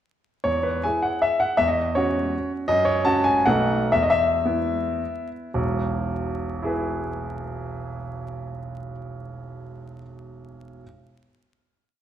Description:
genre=classical, romantic triple-time dance for piano with dotted rhythms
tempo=104-176 BPM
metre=3/4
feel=rubato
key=E major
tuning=A4 = 441 Hz
part: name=bright grand piano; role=solo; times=0.4-10.8 s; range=E1 to A5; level=-22 LUFS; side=equal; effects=none
room=wet recital hall reverb, RT60 1.4 s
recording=vinyl crackle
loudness=-21 LUFS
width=side -10 dB against mid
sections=0.5-5.5 A section; 5.5-8.7 final chord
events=slowing down 2.1-5.5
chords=0.5 E; 1.6 F#5/E; 2.7 F#5; 3.5 B7; 3.9 E5; 5.5 E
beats=| 0.45 0.85 1.23 | 1.59 1.96 2.33 | 2.68 3.05 3.46 | 3.93 4.46 5.00 | 5.54 6.06 6.62 | 7.12 7.63 8.16

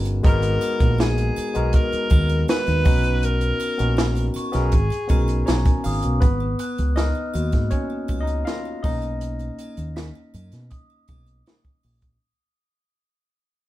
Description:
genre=lush 1970s-style soul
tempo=80 BPM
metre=4/4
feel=straight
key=G# dorian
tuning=A4 = 439 Hz
part: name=barky tine electric piano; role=accompaniment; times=0.0-12.2 s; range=G#3 to A#5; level=-27 LUFS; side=left 2 dB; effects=overdrive
part: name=fingered electric bass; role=bass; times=0.0-12.2 s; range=G1 to B2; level=-23 LUFS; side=equal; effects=none
part: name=compact cocktail drum kit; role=drums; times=0.1-12.2 s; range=hi-hat, kick drum, snare drum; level=-20 LUFS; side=equal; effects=none
part: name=triangle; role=percussion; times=0.1-12.2 s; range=none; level=-45 LUFS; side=right 3 dB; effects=none
part: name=bright alto saxophone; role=melody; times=0.3-5.6 s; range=G#4 to B4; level=-26 LUFS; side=equal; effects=none
part: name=glockenspiel with rubber mallets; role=texture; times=4.4-12.0 s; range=C#6 to B6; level=-36 LUFS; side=equal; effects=none
room=moderate studio reverb, RT60 0.8 s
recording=band playing live in one room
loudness=-19 LUFS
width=side -15 dB against mid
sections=0.0-6.2 A section; 6.2-12.2 B section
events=tine electric piano fill 5.1-6.2; fade-out 6.2-12.2; tine electric piano solo 6.2-12.2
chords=0.2 G#m9; 2.9 Bmaj7; 4.7 G#m11; 8.8 Bmaj7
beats=| 0.24 0.99 1.74 2.48 | 3.23 3.98 4.73 5.47 | 6.22 6.97 7.72 8.46 | 9.21 9.96 10.71 11.46

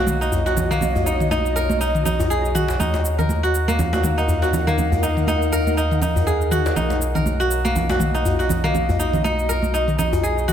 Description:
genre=afro house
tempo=121 BPM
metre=4/4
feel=swing 57% on 16ths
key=unclear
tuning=A4 = 440 Hz
part: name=ethereal airy pad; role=sustained chords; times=0.0-10.5 s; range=Eb4 to Gb5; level=-27 LUFS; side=equal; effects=ensemble chorus, built-in reverb, tremolo
part: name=kora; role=arpeggios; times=0.0-10.5 s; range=Bb3 to Bb4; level=-22 LUFS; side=right 1 dB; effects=low-pass filter, dub echo
part: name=warm sub bass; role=bass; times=0.0-10.5 s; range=B1 to Eb2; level=-23 LUFS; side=equal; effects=none
part: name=electronic toms and shaker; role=drums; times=0.1-10.5 s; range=none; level=-27 LUFS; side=left 2 dB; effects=none
part: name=congas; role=percussion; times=0.1-10.1 s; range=none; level=-26 LUFS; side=right 4 dB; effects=none
part: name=djembe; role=percussion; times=0.3-10.2 s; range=none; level=-27 LUFS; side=left 2 dB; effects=none
room=light reverb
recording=none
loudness=-18 LUFS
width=side -9 dB against mid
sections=0.0-10.5 A section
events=none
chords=0.0 Badd9; 2.8 Ebm; 6.8 Badd9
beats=0.32 | 0.81 1.31 1.80 2.30 | 2.80 3.29 3.79 4.29 | 4.78 5.28 5.77 6.27 | 6.76 7.26 7.76 8.25 | 8.75 9.24 9.74 10.23

